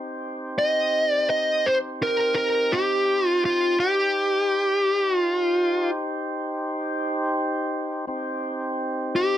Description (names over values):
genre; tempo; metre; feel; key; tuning
blues; 56 BPM (dotted quarters); 12/8; straight; C minor; A4 = 440 Hz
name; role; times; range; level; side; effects
tonewheel organ; sustained chords; 0.0-9.4 s; C4 to C5; -28 LUFS; equal; slow rotary speaker
smooth overdriven lead guitar; melody; 0.6-9.4 s; F4 to Eb5; -20 LUFS; equal; none
room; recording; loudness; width
light reverb; dark, warm production; -21 LUFS; side -11 dB against mid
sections
0.0-9.4 A section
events
none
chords
0.0 Cm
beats
0.58 1.66 2.73 | 3.80 4.87 5.94 7.01 | 8.08 9.16